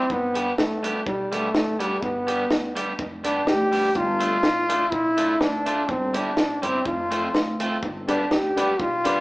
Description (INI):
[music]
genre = ska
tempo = 124 BPM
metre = 4/4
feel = straight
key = G mixolydian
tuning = A4 = 437 Hz
[part]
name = clear trombone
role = melody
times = 0.0-9.2 s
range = G3 to G4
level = -23 LUFS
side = equal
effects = none
[part]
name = electric guitar at the edge of break-up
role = accompaniment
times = 0.0-9.2 s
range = G3 to A4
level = -29 LUFS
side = right 1 dB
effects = none
[part]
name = upright bass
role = bass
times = 0.0-9.2 s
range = F1 to D2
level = -34 LUFS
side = equal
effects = none
[part]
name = compact cocktail drum kit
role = drums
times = 0.1-9.2 s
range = hi-hat, kick drum, snare drum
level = -26 LUFS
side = equal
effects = dub echo
[part]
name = warm upright piano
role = stabs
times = 8.1-9.2 s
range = D4 to D5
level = -26 LUFS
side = left 2 dB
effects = none
[sound]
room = wet large studio reverb, RT60 1.5 s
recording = band playing live in one room, small speaker sound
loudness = -21 LUFS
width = side -22 dB against mid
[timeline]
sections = 0.0-9.2 A section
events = trombone solo 0.0-9.2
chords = 0.1 G; 4.0 Dm/G; 5.9 C/G; 6.9 F; 7.8 G